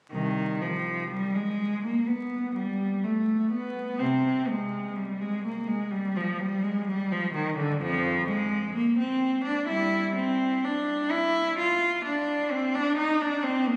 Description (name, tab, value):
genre	classical, baroque-style suite movement for unaccompanied cello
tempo	64 BPM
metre	4/4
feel	rubato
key	unclear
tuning	A4 = 440 Hz
part	rich cello	solo	0.1-13.8 s	C2 to F4	-27 LUFS	equal	none
room	wet church reverb, RT60 4.0 s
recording	recorded on a phone in the room, club reverb, vinyl crackle, compression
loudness	-28 LUFS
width	mono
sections	0.1-13.8 A section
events	none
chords	none